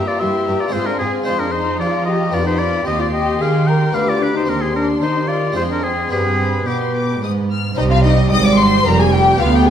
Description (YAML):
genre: classical, baroque-style concerto movement with solo episodes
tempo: 111 BPM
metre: 3/4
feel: straight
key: C minor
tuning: A4 = 435 Hz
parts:
  - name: clear oboe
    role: melody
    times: 0.0-7.2 s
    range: G4 to G5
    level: -22 LUFS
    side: left 2 dB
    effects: none
  - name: rich chamber violin section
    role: melody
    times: 0.0-9.7 s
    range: Eb5 to F6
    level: -23 LUFS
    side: left 4 dB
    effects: none
  - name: warm studio violin section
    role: second line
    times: 0.0-9.7 s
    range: B3 to Eb5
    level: -21 LUFS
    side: left 2 dB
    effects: none
  - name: harpsichord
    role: accompaniment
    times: 0.0-9.7 s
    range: D2 to F4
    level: -25 LUFS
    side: equal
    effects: none
  - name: rich chamber viola section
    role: accompaniment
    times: 0.0-9.7 s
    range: G3 to B4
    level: -23 LUFS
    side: right 1 dB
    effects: none
  - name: warm chamber cello section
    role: bass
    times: 0.2-9.7 s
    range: D2 to F3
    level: -20 LUFS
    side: right 2 dB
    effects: none
  - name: clear studio double bass section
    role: bass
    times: 7.8-9.7 s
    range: F1 to D2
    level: -18 LUFS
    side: right 2 dB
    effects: none
room: wet recital hall reverb, RT60 1.5 s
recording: dark, warm production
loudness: -14 LUFS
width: side -9 dB against mid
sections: 0.0-7.8 A section; 7.8-9.7 B section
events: none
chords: 0.0 C7/G; 0.7 Fm/Ab; 1.3 Dm7b5/F; 2.3 G7/F; 2.9 Cm/Eb; 4.0 G/D; 4.5 Cm/Eb; 5.6 Dm7b5/F; 6.1 G; 7.8 Cm